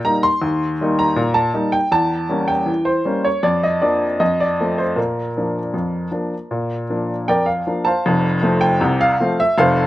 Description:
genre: ragtime piano.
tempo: 79 BPM.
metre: 2/4.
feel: straight.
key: Bb major.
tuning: A4 = 442 Hz.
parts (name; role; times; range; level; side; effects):
clear upright piano; solo; 0.0-9.9 s; F1 to C6; -16 LUFS; equal; none.
room: little or no reverb.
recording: recorded outdoors, with no room sound.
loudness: -16 LUFS.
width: side -15 dB against mid.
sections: 0.0-8.0 A section; 8.0-9.9 B section.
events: none.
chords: 0.0 Eb; 1.9 Edim7; 3.4 Bb/F; 4.2 F; 5.0 Bb; 8.0 F.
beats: | 0.43 1.18 | 1.94 2.69 | 3.45 4.21 | 4.97 5.74 | 6.50 7.27 | 8.03 8.79 | 9.55.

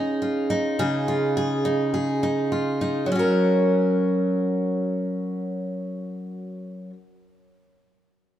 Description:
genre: pop.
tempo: 104 BPM.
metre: 4/4.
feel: swing 55% on 16ths.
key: F# major.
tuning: A4 = 440 Hz.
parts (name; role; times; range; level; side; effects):
picked steel-string acoustic guitar; accompaniment; 0.0-7.0 s; C#3 to A#4; -22 LUFS; equal; none.
room: wet plate reverb, RT60 3.0 s.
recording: heard from further back in the room.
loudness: -21 LUFS.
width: side -11 dB against mid.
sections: 0.0-3.1 A section; 3.1-5.4 B section.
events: none.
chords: 0.0 C#add9; 3.1 F#.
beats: 0.21 | 0.79 1.36 1.94 2.52 | 3.10 3.68 4.26 4.84.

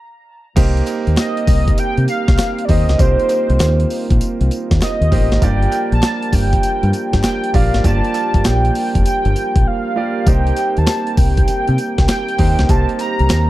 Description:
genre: R&B, new jack swing.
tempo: 99 BPM.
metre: 4/4.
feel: swing 66% on 16ths.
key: C dorian.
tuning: A4 = 440 Hz.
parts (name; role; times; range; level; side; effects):
clear concert grand piano; accompaniment; 0.6-13.5 s; Bb3 to D5; -23 LUFS; right 5 dB; none.
dark French horn section; sustained chords; 0.6-13.5 s; Eb3 to G4; -25 LUFS; equal; none.
deep dub fingered electric bass; bass; 0.6-13.5 s; F1 to C3; -15 LUFS; equal; none.
breakbeat sampler-style drum kit; drums; 0.6-13.5 s; crash cymbal, hi-hat, kick drum, snare drum, tambourine; -17 LUFS; equal; none.
group handclap; percussion; 0.9-13.5 s; none; -36 LUFS; left 6 dB; none.
warm velvety synth lead; melody; 1.2-13.5 s; C5 to Bb5; -21 LUFS; equal; chorus.
room: little or no reverb.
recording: dry, close 1970s-style studio recording.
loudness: -13 LUFS.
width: side -16 dB against mid.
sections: 0.6-13.5 A section.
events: stop 0.0-0.6; break 9.7-10.3.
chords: 0.0 N.C.; 0.6 Cm7; 5.4 Gm7; 10.3 Cm7.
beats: | 0.57 1.18 1.78 2.39 | 2.99 3.60 4.21 4.81 | 5.42 6.02 6.63 7.24 | 7.84 8.45 9.05 9.66 | 10.27 10.87 11.48 12.08 | 12.69 13.30.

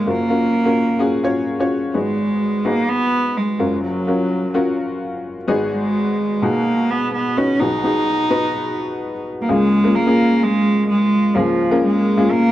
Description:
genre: pop.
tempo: 128 BPM.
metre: 4/4.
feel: straight.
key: Db mixolydian.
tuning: A4 = 440 Hz.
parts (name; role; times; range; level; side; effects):
warm cello; melody; 0.0-12.5 s; F3 to Eb4; -18 LUFS; right 1 dB; none.
clear upright piano; accompaniment; 0.0-12.5 s; Gb1 to Db5; -20 LUFS; left 2 dB; none.
room: moderate booth ambience, RT60 0.2 s.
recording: dry, close 1970s-style studio recording.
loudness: -16 LUFS.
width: side -14 dB against mid.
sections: 0.0-2.0 A section; 2.0-9.5 B section; 9.5-12.5 C section.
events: none.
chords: 0.1 Gbmaj7; 2.0 Abm7; 3.6 Gbmaj7; 5.5 Abm7; 7.6 Cb6; 9.5 Db6.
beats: | 0.07 0.54 1.01 1.48 | 1.95 2.42 2.89 3.37 | 3.84 4.31 4.78 5.25 | 5.72 6.19 6.66 7.13 | 7.60 8.07 8.54 9.01 | 9.48 9.95 10.42 10.89 | 11.36 11.83 12.30.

